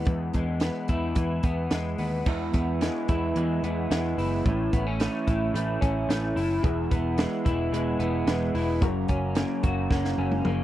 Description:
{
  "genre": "jangly indie pop",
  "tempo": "110 BPM",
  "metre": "4/4",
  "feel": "straight",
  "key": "unclear",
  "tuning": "A4 = 440 Hz",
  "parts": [
    { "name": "electric guitar through a small old amp", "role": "arpeggios", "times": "0.0-10.6 s", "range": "E2 to F#4", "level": "-29 LUFS", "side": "left 3 dB", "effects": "analog chorus" },
    { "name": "vintage muted picked electric bass", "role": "bass", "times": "0.0-10.6 s", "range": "E1 to E2", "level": "-29 LUFS", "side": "equal", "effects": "none" },
    { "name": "compact cocktail drum kit", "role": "drums", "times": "0.1-10.6 s", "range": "crash cymbal, hi-hat, kick drum, snare drum, toms", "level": "-27 LUFS", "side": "right 1 dB", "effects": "none" },
    { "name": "electric guitar through a small old amp", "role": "accompaniment", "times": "2.3-10.6 s", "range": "F#2 to E4", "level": "-30 LUFS", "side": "right 5 dB", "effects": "none" },
    { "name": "dark upright piano", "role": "accompaniment", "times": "6.6-10.6 s", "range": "C#4 to B4", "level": "-38 LUFS", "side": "left 8 dB", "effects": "none" }
  ],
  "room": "little or no reverb",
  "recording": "dry, close 1970s-style studio recording",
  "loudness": "-24 LUFS",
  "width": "side -13 dB against mid",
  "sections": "0.0-2.3 A section; 2.3-10.6 B section",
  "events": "drum fill 9.9-10.6",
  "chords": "0.0 E; 4.5 A; 6.6 E; 8.8 F#",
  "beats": "| 0.08 0.62 1.17 1.72 | 2.27 2.81 3.36 3.91 | 4.45 5.00 5.54 6.09 | 6.63 7.18 7.73 8.27 | 8.82 9.36 9.91 10.46"
}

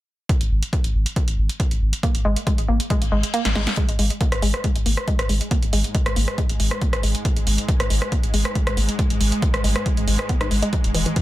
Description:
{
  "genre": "driving peak-time techno",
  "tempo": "138 BPM",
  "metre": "4/4",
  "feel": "straight",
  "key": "unclear",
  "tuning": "A4 = 440 Hz",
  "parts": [
    { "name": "electronic kick drum", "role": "drums", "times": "0.3-11.2 s", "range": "none", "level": "-22 LUFS", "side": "equal", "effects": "none" },
    { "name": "punchy analog drum machine", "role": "drums", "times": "0.3-11.2 s", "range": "hi-hat, rim click, snare drum", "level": "-26 LUFS", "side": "right 1 dB", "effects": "sidechain pumping on hats" },
    { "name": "saturated sub bass", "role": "bass", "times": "0.4-11.1 s", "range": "E1 to G#1", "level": "-23 LUFS", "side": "equal", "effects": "tube saturation, sidechain pumping, low-pass filter" },
    { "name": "woody wave-folded pluck", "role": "riff", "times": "2.0-11.2 s", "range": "E3 to D#4", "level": "-27 LUFS", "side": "left 1 dB", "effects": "chorus, tube saturation, sidechain pumping, dub echo" },
    { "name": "reverse cymbal", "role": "sound effects", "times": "3.1-3.8 s", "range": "none", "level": "-32 LUFS", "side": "left 8 dB", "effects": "none" },
    { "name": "swarming drone", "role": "drone", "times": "5.4-11.2 s", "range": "G#2 to G#3", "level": "-30 LUFS", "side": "right 1 dB", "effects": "built-in reverb, sidechain pumping" }
  ],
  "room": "digital ambience",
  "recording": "dense, heavily limited modern master",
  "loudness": "-18 LUFS",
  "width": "side -15 dB against mid",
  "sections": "0.3-3.8 A section; 3.8-11.2 B section",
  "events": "reverse cymbal 3.1-3.8; kick drops out 3.3-3.8; drum fill 3.4-3.8",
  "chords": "none",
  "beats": "| 0.29 0.73 1.16 1.60 | 2.03 2.47 2.90 3.34 | 3.77 4.21 4.64 5.08 | 5.51 5.95 6.38 6.82 | 7.25 7.68 8.12 8.55 | 8.99 9.42 9.86 10.29 | 10.73 11.16"
}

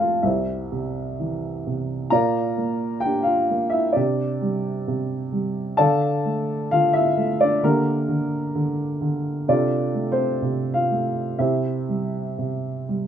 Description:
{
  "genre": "classical, lyrical solo piano",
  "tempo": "64 BPM",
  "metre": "4/4",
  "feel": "rubato",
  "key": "unclear",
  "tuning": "A4 = 440 Hz",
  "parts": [
    { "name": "dark upright piano", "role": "solo", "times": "0.0-13.1 s", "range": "C2 to C6", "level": "-20 LUFS", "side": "equal", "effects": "none" }
  ],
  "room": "little or no reverb",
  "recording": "close, detailed microphones",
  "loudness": "-20 LUFS",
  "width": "side -9 dB against mid",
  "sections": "0.0-13.1 A section",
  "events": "none",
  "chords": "0.2 C; 2.1 Bb; 4.0 C5; 5.8 Dm; 7.6 Gm/D; 9.5 F/C; 11.4 C",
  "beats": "0.24 1.19 | 2.12 3.04 3.96 4.87 | 5.78 6.71 7.63 8.55 | 9.48 10.42 11.39 12.38"
}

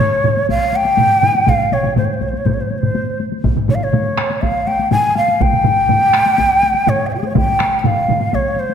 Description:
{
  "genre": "japanese traditional, taiko drum ensemble",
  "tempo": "122 BPM",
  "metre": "4/4",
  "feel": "straight",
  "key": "unclear",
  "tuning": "A4 = 441 Hz",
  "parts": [
    { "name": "breathy hollow shakuhachi", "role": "melody", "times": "0.0-8.7 s", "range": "F4 to Ab5", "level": "-15 LUFS", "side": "equal", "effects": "none" },
    { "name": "solo taiko drums", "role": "percussion", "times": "0.0-8.7 s", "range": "none", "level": "-23 LUFS", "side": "left 4 dB", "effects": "none" },
    { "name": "taiko ensemble", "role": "percussion", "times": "0.0-8.2 s", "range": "none", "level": "-22 LUFS", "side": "left 4 dB", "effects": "none" },
    { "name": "taiko ensemble", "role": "percussion", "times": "0.2-8.2 s", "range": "none", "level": "-22 LUFS", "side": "right 5 dB", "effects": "none" },
    { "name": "taiko ensemble", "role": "percussion", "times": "0.5-8.5 s", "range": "none", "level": "-23 LUFS", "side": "right 2 dB", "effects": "none" }
  ],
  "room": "wet scoring stage reverb, RT60 1.7 s",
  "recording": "none",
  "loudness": "-13 LUFS",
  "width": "side -8 dB against mid",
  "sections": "0.0-8.7 A section",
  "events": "none",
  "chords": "none",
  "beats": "0.00 0.49 0.98 | 1.48 1.97 2.46 2.95 | 3.44 3.93 4.42 4.92 | 5.41 5.90 6.39 6.88 | 7.36 7.85 8.34"
}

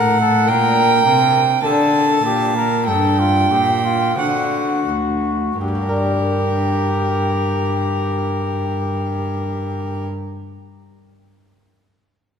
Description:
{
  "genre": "classical, baroque-style sonata movement with continuo",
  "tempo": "41-54 BPM",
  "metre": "3/4",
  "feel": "straight",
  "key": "G minor",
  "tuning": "A4 = 439 Hz",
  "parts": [
    { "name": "mellow trumpet", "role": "melody", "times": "0.0-10.1 s", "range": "F4 to Bb4", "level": "-21 LUFS", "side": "left 6 dB", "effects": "none" },
    { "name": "rich violin", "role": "second line", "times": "0.0-10.0 s", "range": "Bb4 to A5", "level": "-20 LUFS", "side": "right 6 dB", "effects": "none" },
    { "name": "lute", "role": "accompaniment", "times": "0.0-10.3 s", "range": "D2 to Bb4", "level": "-26 LUFS", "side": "left 2 dB", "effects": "none" },
    { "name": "rich cello", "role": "bass", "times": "0.0-10.1 s", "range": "D2 to D3", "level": "-21 LUFS", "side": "right 1 dB", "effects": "none" }
  ],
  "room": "wet concert hall reverb, RT60 2.2 s",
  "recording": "minimal, uncompressed stereo recording",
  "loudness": "-15 LUFS",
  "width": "side -7 dB against mid",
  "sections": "0.0-5.6 A section; 5.6-9.9 B section",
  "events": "slowing down 0.0-5.6",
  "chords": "0.5 Gm/Bb; 1.6 Gm; 4.2 D7; 5.6 Gm",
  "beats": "0.49 | 1.64 2.87 4.19 | 5.61 7.04 8.46"
}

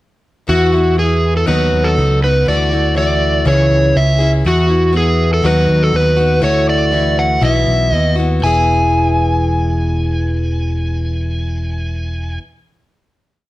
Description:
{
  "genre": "folk rock and heartland rock",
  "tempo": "121 BPM",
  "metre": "4/4",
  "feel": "straight",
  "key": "E major",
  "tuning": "A4 = 439 Hz",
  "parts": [
    { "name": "overdriven slide guitar", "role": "melody", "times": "0.5-12.4 s", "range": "F#4 to G#5", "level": "-16 LUFS", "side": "right 1 dB", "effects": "none" },
    { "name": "picked plugged-in steel-string acoustic guitar", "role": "accompaniment", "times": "0.5-12.4 s", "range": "B2 to G#4", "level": "-19 LUFS", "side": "left 3 dB", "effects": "none" },
    { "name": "picked electric bass", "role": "bass", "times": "0.5-12.4 s", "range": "E1 to E2", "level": "-15 LUFS", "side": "equal", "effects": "none" }
  ],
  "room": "light reverb",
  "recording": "none",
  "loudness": "-12 LUFS",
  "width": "side -17 dB against mid",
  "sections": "0.5-8.4 verse; 8.4-12.4 final chord",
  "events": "none",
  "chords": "0.5 Esus2; 1.5 B/D#; 2.5 Dadd9; 3.5 C#m; 4.4 Esus2; 5.4 B/D#; 6.4 Dadd9; 7.4 Bsus4; 8.4 E",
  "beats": "| 0.47 0.97 1.47 1.96 | 2.46 2.96 3.45 3.95 | 4.45 4.94 5.44 5.93 | 6.43 6.92 7.42 7.92 | 8.42 8.91 9.41 9.91 | 10.41 10.90 11.40 11.90"
}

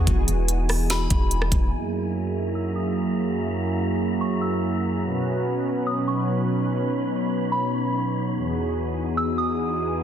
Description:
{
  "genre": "hip hop, atmospheric cloud-rap",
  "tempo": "145 BPM",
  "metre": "4/4",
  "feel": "half-time",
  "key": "unclear",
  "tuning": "A4 = 437 Hz",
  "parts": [
    { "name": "soft synth bell", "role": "melody", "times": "0.0-10.0 s", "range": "B5 to E6", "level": "-30 LUFS", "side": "equal", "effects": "chorus, low-pass filter, digital delay" },
    { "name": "warm analog pad", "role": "sustained chords", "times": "0.0-10.0 s", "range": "E2 to B4", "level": "-24 LUFS", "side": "right 1 dB", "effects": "chorus, sidechain pumping, low-pass filter" },
    { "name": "soft 808-style bass", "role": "bass", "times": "0.0-1.7 s", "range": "E1", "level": "-23 LUFS", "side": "equal", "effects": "none" },
    { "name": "wind-like tuned noise texture", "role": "texture", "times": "0.0-10.0 s", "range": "D#4 to B5", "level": "-33 LUFS", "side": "left 1 dB", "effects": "built-in reverb" },
    { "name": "trap drum kit", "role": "drums", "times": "0.1-1.6 s", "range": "hi-hat, kick drum, rim click, snare drum", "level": "-22 LUFS", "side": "equal", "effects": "none" }
  ],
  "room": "light reverb",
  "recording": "dense, heavily limited modern master",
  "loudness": "-22 LUFS",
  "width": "side -9 dB against mid",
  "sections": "0.0-1.7 A section; 1.7-10.0 B section",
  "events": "filter sweep 1.7-10.0",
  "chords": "0.0 Emaj7; 1.7 F#7; 5.0 Badd9; 8.3 Emaj7",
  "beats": "| 0.07 0.48 0.90 1.31 | 1.73 2.14 2.55 2.97 | 3.38 3.79 4.21 4.62 | 5.04 5.45 5.86 6.28 | 6.69 7.10 7.52 7.93 | 8.35 8.76 9.17 9.59 | 10.00"
}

